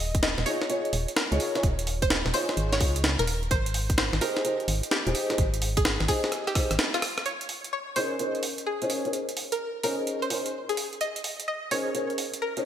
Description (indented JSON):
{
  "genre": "UK garage, two-step garage",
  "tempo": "128 BPM",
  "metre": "4/4",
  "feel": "swing 66% on 16ths",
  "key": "Bb dorian",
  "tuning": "A4 = 440 Hz",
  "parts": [
    { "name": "string-like resonator pluck", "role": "melody", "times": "0.0-12.7 s", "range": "F4 to Eb5", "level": "-31 LUFS", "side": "equal", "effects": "chorus, phaser, digital delay" },
    { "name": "organ-like FM bass", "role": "bass", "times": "0.0-6.8 s", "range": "Eb1 to Db2", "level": "-28 LUFS", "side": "equal", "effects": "sidechain pumping" },
    { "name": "breakbeat sampler-style drum kit", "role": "drums", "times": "0.1-12.6 s", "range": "hi-hat, rim click, snare drum", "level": "-29 LUFS", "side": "right 1 dB", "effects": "small room ambience, gated reverb" },
    { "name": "electronic kick drum", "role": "drums", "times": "0.1-6.7 s", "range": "none", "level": "-26 LUFS", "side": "equal", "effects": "small room ambience" },
    { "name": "dark grand piano", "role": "stabs", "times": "0.5-12.7 s", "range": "Db4 to Db5", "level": "-30 LUFS", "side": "equal", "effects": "ensemble chorus, low-pass filter, digital delay" }
  ],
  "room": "moderate lush hall reverb, RT60 2.1 s",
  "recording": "bright 1980s-style digital production",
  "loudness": "-25 LUFS",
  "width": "side -10 dB against mid",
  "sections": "0.0-7.3 A section; 7.3-12.7 B section",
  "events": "drum fill 6.3-7.3; filter sweep on grand piano 7.3-12.7",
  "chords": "0.0 Eb9sus4; 3.5 Abmaj7; 7.3 Bbm11"
}